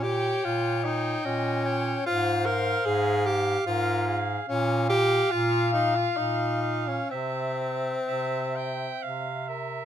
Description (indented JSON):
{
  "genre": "classical, lyrical piece for single-reed quartet",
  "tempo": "61-75 BPM",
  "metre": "3/4",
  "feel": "rubato",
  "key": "F minor",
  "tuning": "A4 = 439 Hz",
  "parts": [
    { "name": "mellow soprano saxophone", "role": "melody", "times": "0.0-9.8 s", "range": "Ab4 to F5", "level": "-33 LUFS", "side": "left 7 dB", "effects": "none" },
    { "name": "clear alto saxophone", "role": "second line", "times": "0.0-9.8 s", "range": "E5 to G5", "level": "-32 LUFS", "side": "right 8 dB", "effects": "none" },
    { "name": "warm tenor saxophone", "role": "accompaniment", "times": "0.0-9.5 s", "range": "C4 to Bb4", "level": "-27 LUFS", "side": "left 2 dB", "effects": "none" },
    { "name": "warm bass clarinet", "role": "bass", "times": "0.0-9.8 s", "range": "Ab2 to C3", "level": "-29 LUFS", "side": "right 2 dB", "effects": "none" }
  ],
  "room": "light reverb",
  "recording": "minimal, uncompressed stereo recording",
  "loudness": "-24 LUFS",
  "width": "side -10 dB against mid",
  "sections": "0.0-9.8 A section",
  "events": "none",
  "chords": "0.0 Gdim/Bb; 2.1 Fm/Ab; 4.5 Bbmadd11; 7.1 C"
}